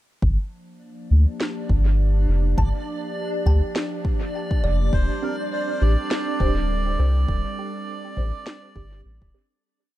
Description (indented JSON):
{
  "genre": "ambient dub",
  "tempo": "102 BPM",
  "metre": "4/4",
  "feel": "swing 57% on 16ths",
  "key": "G minor",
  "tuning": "A4 = 443 Hz",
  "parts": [
    { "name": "warbly tape-like pad", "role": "sustained chords", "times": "0.2-9.6 s", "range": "F3 to D5", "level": "-32 LUFS", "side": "equal", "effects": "chorus, built-in reverb" },
    { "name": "soft dub sub bass", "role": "bass", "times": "0.2-9.3 s", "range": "D1 to D2", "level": "-19 LUFS", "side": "equal", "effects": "none" },
    { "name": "electronic kick drum", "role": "drums", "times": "0.2-9.3 s", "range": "none", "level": "-24 LUFS", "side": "equal", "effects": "none" },
    { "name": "backwards swelling texture", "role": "texture", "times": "1.6-9.7 s", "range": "D4 to D5", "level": "-33 LUFS", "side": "right 2 dB", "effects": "built-in reverb" },
    { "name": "electronic snare drum", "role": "drums", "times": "1.4-8.6 s", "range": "none", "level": "-30 LUFS", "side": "equal", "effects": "dub echo" },
    { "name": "kalimba", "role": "arpeggios", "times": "2.6-5.7 s", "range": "G4 to A5", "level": "-35 LUFS", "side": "right 2 dB", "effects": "dub echo" },
    { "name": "melodica", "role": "melody", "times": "4.9-9.0 s", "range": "Bb4 to D5", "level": "-31 LUFS", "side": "right 2 dB", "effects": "dub echo" },
    { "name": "filtered dub chord stab", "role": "stabs", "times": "5.2-9.5 s", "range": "C4 to G4", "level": "-34 LUFS", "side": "right 3 dB", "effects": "phaser, dub echo" }
  ],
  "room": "little or no reverb",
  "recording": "dark, warm production",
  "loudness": "-20 LUFS",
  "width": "side -15 dB against mid",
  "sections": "0.2-9.6 groove",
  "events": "fade-out 6.5-9.6",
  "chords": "0.2 Gm7; 4.9 D7sus4",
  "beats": "| 0.23 0.82 1.40 1.99 | 2.58 3.17 3.76 4.34 | 4.93 5.52 6.11 6.70 | 7.29 7.87 8.46 9.05"
}